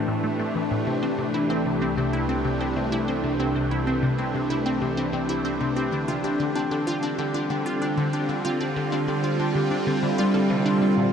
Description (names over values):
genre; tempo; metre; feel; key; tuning
ambient, sequencer-driven space music; 95 BPM; 4/4; straight; unclear; A4 = 440 Hz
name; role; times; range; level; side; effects
evolving wavetable pad; sustained chords; 0.0-11.1 s; C2 to G4; -25 LUFS; equal; phaser, built-in reverb
Celtic harp; arpeggios; 0.0-11.1 s; C3 to G4; -29 LUFS; equal; auto-pan, ping-pong delay
resonant blip pluck; riff; 0.1-11.1 s; A2 to A4; -27 LUFS; left 1 dB; phaser, ping-pong delay
room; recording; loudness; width
wet huge ambient reverb, RT60 7.5 s; dark, warm production; -22 LUFS; side -7 dB against mid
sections
0.0-11.0 A section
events
none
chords
0.0 Am7; 0.9 C6; 5.9 Dmadd9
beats
0.24 | 0.87 1.50 2.13 2.76 | 3.40 4.03 4.66 5.29 | 5.92 6.55 7.18 7.82 | 8.45 9.08 9.71 10.34 | 10.97